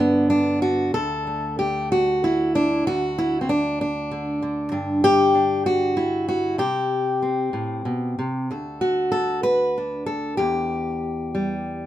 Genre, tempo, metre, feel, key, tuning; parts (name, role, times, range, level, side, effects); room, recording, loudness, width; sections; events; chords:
folk, solo fingerstyle acoustic guitar; 64 BPM (dotted quarters); 6/8; rubato; D mixolydian; A4 = 440 Hz
fingerpicked steel-string acoustic guitar; solo; 0.0-11.9 s; D2 to B4; -20 LUFS; equal
moderate studio reverb, RT60 0.8 s; minimal, uncompressed stereo recording; -20 LUFS; side -12 dB against mid
0.9-11.9 A section
0.0 G; 0.9 D; 2.9 N.C.; 4.7 G5; 6.6 C5; 8.5 D; 10.4 Em